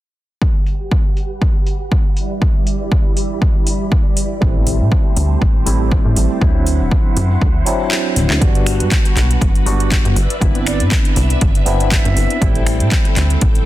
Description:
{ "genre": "filtered disco house", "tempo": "120 BPM", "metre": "4/4", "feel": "swing 55% on 16ths", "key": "G major", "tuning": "A4 = 440 Hz", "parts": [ { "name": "string machine, full ensemble", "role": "sustained chords", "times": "0.4-13.7 s", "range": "G3 to B5", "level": "-26 LUFS", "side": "right 1 dB", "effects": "phaser, ensemble chorus, sidechain pumping, low-pass filter" }, { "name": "electronic kick drum", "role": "drums", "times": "0.4-13.5 s", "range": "none", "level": "-15 LUFS", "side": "equal", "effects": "overdrive" }, { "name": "house drum kit", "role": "drums", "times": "0.7-13.6 s", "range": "finger snaps, handclaps, hi-hat", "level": "-22 LUFS", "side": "equal", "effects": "overdrive, sidechain pumping on hats, low-pass filter on hats, low-pass filter on snare, low-pass filter on room" }, { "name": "barky tine electric piano", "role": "accompaniment", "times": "4.4-13.6 s", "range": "F#3 to F#4", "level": "-21 LUFS", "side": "equal", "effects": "slow stereo tremolo, phaser, sidechain pumping, low-pass filter" }, { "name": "plucky analog bass", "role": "bass", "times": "4.4-13.6 s", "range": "D1 to A2", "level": "-16 LUFS", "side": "equal", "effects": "sidechain pumping, low-pass filter" }, { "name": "tambourine and congas", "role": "percussion", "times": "4.4-8.4 s", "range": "none", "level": "-26 LUFS", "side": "right 1 dB", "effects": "sidechain pumping on perc, low-pass filter on perc" }, { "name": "breathy concert flute", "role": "melody", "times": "10.7-12.5 s", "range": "D5 to E5", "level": "-27 LUFS", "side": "right 3 dB", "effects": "sidechain pumping, low-pass filter, ping-pong delay" } ], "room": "little or no reverb", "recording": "dense, heavily limited modern master", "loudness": "-13 LUFS", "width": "side -15 dB against mid", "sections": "0.4-8.4 A section; 8.4-13.7 B section", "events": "filter sweep 0.4-8.4; kick drops out 7.9-8.4; drum fill 7.9-8.4", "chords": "0.4 Gmaj7; 2.2 G6; 4.4 Am7; 6.4 D9; 8.4 Gmaj7; 10.2 Cmaj9/G; 12.4 Am7" }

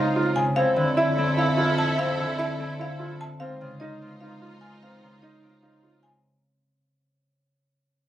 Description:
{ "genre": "classical, minimalist pattern music", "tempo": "296 BPM (eighths)", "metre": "7/8", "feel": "straight", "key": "unclear", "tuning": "A4 = 440 Hz", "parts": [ { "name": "buzzing marimba with hard mallets", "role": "melody", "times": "0.0-6.3 s", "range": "Eb5 to A5", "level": "-29 LUFS", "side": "left 2 dB", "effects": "none" }, { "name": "warm oboe", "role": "second line", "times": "0.0-6.0 s", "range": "E4 to F4", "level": "-30 LUFS", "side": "equal", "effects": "none" }, { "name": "concert harp", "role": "accompaniment", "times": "0.0-6.3 s", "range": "Db3 to C4", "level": "-28 LUFS", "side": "left 2 dB", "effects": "none" }, { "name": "clear studio string section", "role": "sustained chords", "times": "0.0-6.0 s", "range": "Eb4 to A4", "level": "-32 LUFS", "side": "right 1 dB", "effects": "none" }, { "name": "clear baby grand piano", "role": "arpeggios", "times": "0.0-6.1 s", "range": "C4 to F4", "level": "-28 LUFS", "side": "right 3 dB", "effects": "none" }, { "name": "rich double bass", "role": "bass", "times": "0.0-6.1 s", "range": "Db2 to F2", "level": "-33 LUFS", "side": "right 1 dB", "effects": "none" } ], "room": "light reverb", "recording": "recorded on a phone in the room, club reverb, compression", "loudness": "-21 LUFS", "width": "side -12 dB against mid", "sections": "0.0-6.2 A section", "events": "fade-out 0.0-6.2", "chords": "0.0 Dbadd9; 0.6 Fmaj7; 3.4 Dbadd9" }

